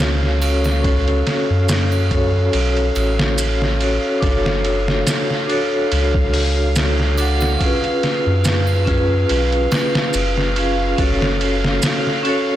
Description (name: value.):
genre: trip hop.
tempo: 71 BPM.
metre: 4/4.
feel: swing 55% on 16ths.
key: F# harmonic minor.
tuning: A4 = 440 Hz.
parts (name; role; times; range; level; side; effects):
vibraphone with medium hard mallets; accompaniment; 0.0-12.6 s; C#4 to F#5; -20 LUFS; left 1 dB; tremolo, low-pass filter, tape echo.
soft dub sub bass; bass; 0.0-11.8 s; F#1 to F#2; -19 LUFS; equal; tube saturation.
trip hop sampler-style drum kit; drums; 0.0-12.5 s; hi-hat, kick drum, ride cymbal, snare drum; -21 LUFS; equal; overdrive, vintage 12-bit sampler grit.
bowed-like drone; texture; 0.0-12.6 s; E#5; -28 LUFS; right 2 dB; built-in reverb.
triangle and maracas; percussion; 0.4-12.0 s; none; -31 LUFS; right 5 dB; none.
room: light reverb, digital ambience.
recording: blown-out, overdriven recording, overdrive.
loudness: -15 LUFS.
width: side -12 dB against mid.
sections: 0.0-12.6 A section.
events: filter sweep on vibraphone 0.0-12.6.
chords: 0.0 F#m; 4.2 F#mmaj7; 7.6 C#7/F#; 11.0 F#m.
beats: 0.00 | 0.84 1.69 2.53 3.38 | 4.22 5.07 5.91 6.76 | 7.60 8.45 9.29 10.14 | 10.98 11.83.